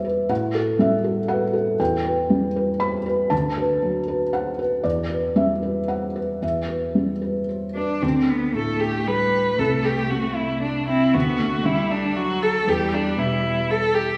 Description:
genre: neoclassical piano and strings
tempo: 117 BPM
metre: 3/4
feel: rubato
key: E minor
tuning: A4 = 442 Hz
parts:
  - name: felt-muted upright piano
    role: accompaniment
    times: 0.0-14.2 s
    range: C2 to B5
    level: -24 LUFS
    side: equal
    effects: none
  - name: rich cello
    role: second line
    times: 7.7-13.7 s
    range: F#3 to D4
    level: -27 LUFS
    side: equal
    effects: none
  - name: rich violin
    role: melody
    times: 8.6-14.2 s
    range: D4 to B4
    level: -24 LUFS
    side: equal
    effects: none
room: wet concert hall reverb, RT60 1.7 s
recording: recorded in a church or concert hall, small room ambience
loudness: -22 LUFS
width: mono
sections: 0.0-8.0 A section; 8.0-14.2 B section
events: none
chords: 0.3 A5; 1.8 Em; 3.3 Bm7/D; 4.8 Em; 8.0 Dsus4; 9.6 N.C.; 12.7 Em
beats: | 0.30 0.80 1.29 | 1.79 2.30 2.81 | 3.31 3.83 4.33 | 4.84 5.36 5.89 | 6.42 6.96 7.49 | 8.03 8.55 9.07 | 9.59 10.11 10.63 | 11.15 11.66 12.17 | 12.68 13.18 13.69

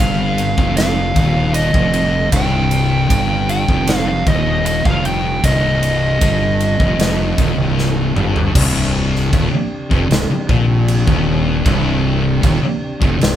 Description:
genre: stoner and doom metal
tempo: 77 BPM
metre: 4/4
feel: straight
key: C minor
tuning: A4 = 442 Hz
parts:
  - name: fuzz lead guitar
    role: melody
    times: 0.0-7.7 s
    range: Eb5 to G5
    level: -20 LUFS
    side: right 1 dB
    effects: wah, distortion
  - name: mellow tonewheel organ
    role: sustained chords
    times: 0.0-13.4 s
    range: C3 to G4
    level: -27 LUFS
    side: equal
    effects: slow rotary speaker
  - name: thick fuzz guitar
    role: riff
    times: 0.0-13.4 s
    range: C2 to Bb2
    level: -20 LUFS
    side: left 6 dB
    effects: distortion
  - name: thick fuzz guitar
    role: riff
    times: 0.0-13.4 s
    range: C2 to Bb2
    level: -21 LUFS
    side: right 4 dB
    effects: distortion
  - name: fuzz fingered electric bass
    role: bass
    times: 0.0-13.4 s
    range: C1 to Bb1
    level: -20 LUFS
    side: equal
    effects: overdrive
  - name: big rock drum kit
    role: drums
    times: 0.4-13.4 s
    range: crash cymbal, kick drum, ride cymbal, snare drum, toms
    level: -19 LUFS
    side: equal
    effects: none
room: moderate studio reverb, RT60 0.7 s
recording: band playing live in one room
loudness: -13 LUFS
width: side -11 dB against mid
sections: 0.0-8.5 A section; 8.5-13.4 B section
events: drum fill 7.8-8.5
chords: 0.0 Cm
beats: 0.77 1.54 | 2.32 3.10 3.88 4.66 | 5.43 6.21 6.99 7.77 | 8.55 9.32 10.10 10.88 | 11.66 12.43 13.21

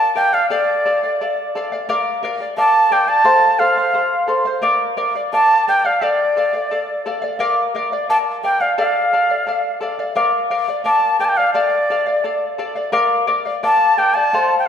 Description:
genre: andean folk, Andean ensemble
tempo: 87 BPM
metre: 2/4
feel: straight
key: unclear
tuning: A4 = 440 Hz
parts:
  - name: quena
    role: melody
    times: 0.0-14.7 s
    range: D5 to A5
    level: -15 LUFS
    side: equal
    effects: none
  - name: charango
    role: accompaniment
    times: 0.0-14.7 s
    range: A4 to F5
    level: -19 LUFS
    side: left 2 dB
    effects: none
room: wet recital hall reverb, RT60 1.7 s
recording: recorded in a church or concert hall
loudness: -15 LUFS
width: side -8 dB against mid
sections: 0.0-10.2 A section; 10.2-14.7 A section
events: none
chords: 0.0 Bb; 0.5 Dm; 1.9 Bb; 3.3 F; 4.6 Bb; 6.0 Dm; 7.4 Bb; 8.8 Dm; 10.2 Bb; 11.5 Dm; 12.9 Bb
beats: | 0.50 1.19 | 1.88 2.57 | 3.26 3.95 | 4.64 5.33 | 6.01 6.71 | 7.39 8.09 | 8.78 9.47 | 10.16 10.85 | 11.54 12.23 | 12.93 13.62 | 14.31

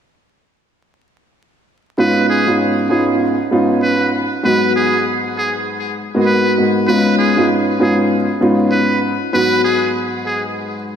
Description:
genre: hip hop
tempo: 98 BPM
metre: 4/4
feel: swing 61% on 16ths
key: unclear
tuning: A4 = 440 Hz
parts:
  - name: trumpet with metal mute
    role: melody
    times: 2.0-10.4 s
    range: G#4 to B4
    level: -18 LUFS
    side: right 1 dB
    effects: high-pass filter, low-pass filter, ping-pong delay
  - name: dark baby grand piano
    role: accompaniment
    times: 2.0-10.9 s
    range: G#2 to F#4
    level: -15 LUFS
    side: equal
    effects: cassette tape, high-pass filter, low-pass filter
room: wet lush hall reverb, RT60 2.5 s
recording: dreamy mix soaked in reverb, vinyl crackle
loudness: -13 LUFS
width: side -8 dB against mid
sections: 2.0-6.9 A section; 6.9-11.0 B section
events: none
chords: 2.0 C#9/G#; 4.4 G#m7; 6.9 C#9/G#; 9.3 G#m7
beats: | 1.99 2.60 3.21 3.83 | 4.44 5.05 5.66 6.28 | 6.89 7.50 8.11 8.72 | 9.34 9.95 10.56

